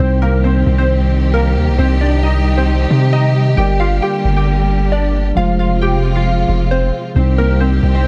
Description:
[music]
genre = hip hop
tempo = 134 BPM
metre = 4/4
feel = half-time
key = C minor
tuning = A4 = 440 Hz
[part]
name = glassy digital keys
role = melody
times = 0.0-8.1 s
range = Bb3 to G5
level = -21 LUFS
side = equal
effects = chorus, tape echo
[part]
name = mellow tine electric piano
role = accompaniment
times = 0.0-8.1 s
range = C3 to D5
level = -23 LUFS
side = equal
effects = none
[part]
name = warm symphonic string section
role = sustained chords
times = 0.0-8.1 s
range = C3 to G4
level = -23 LUFS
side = equal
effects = none
[part]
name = long sustained 808-style bass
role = bass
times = 0.0-8.1 s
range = F1 to C3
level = -16 LUFS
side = equal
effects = none
[sound]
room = little or no reverb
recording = echo-heavy mix, nothing above 10.8 kHz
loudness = -14 LUFS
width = mono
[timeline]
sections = 0.0-8.1 A section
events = none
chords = 0.0 Cm; 3.6 Gm; 5.4 Fm; 7.2 Cm

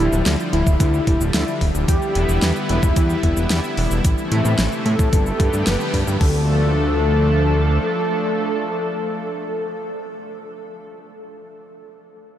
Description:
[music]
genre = synthwave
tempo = 111 BPM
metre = 4/4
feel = straight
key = D dorian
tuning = A4 = 440 Hz
[part]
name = warm velvety synth lead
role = melody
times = 0.0-10.9 s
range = E4 to B4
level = -26 LUFS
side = left 1 dB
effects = chorus, analog delay
[part]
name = FM electric piano with soft pad layer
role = second line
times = 0.0-10.9 s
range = E4 to B4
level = -32 LUFS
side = equal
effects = none
[part]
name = lush unison pad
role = sustained chords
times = 0.0-10.9 s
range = C3 to A4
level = -24 LUFS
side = equal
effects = chorus, sidechain pumping
[part]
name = fat analog bass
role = bass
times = 0.0-7.8 s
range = D1 to A2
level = -19 LUFS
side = equal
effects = sidechain pumping
[part]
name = pop drum kit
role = drums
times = 0.1-6.3 s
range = cabasa, crash cymbal, hi-hat, snare drum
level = -27 LUFS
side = equal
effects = none
[part]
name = electronic kick drum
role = drums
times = 0.7-6.3 s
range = none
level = -18 LUFS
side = equal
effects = overdrive
[sound]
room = moderate huge ambient reverb, RT60 9.3 s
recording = dreamy mix soaked in reverb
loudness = -16 LUFS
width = side -11 dB against mid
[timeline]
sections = 0.0-6.2 A section; 6.2-10.5 B section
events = band accent 5.7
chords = 0.0 Dm; 1.9 Em7; 4.0 Am; 5.1 Gadd9; 6.2 Dm

